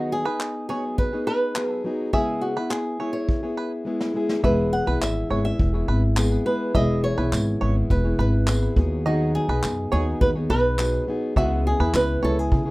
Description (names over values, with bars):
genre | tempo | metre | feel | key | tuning
acoustic pop | 104 BPM | 4/4 | straight | E major | A4 = 440 Hz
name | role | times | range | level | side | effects
flamenco guitar | melody | 0.0-12.7 s | F#4 to F#5 | -26 LUFS | right 1 dB | none
fingerpicked plugged-in steel-string acoustic guitar | accompaniment | 0.0-12.7 s | C#3 to G#4 | -26 LUFS | left 1 dB | none
bluegrass banjo | arpeggios | 0.0-12.4 s | B4 to E5 | -31 LUFS | right 3 dB | tape echo
vintage brush drum kit | drums | 0.4-12.7 s | handclaps, kick drum, snare drum | -24 LUFS | equal | none
upright bass | bass | 4.4-12.7 s | E1 to C#3 | -22 LUFS | equal | none
tambourine | percussion | 5.0-12.1 s | none | -38 LUFS | right 3 dB | none
room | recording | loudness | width
moderate small room reverb, RT60 0.5 s | rough home demo mix | -20 LUFS | side -20 dB against mid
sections
0.0-12.7 A section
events
drum fill 3.9-4.4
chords
0.0 G#m7/D#; 2.1 C#m7; 4.4 E; 8.8 G#m7; 11.4 C#m7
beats
0.40 0.98 1.55 | 2.13 2.71 3.29 3.86 | 4.44 5.02 5.59 6.17 | 6.75 7.33 7.90 8.48 | 9.06 9.63 10.21 10.79 | 11.37 11.94 12.52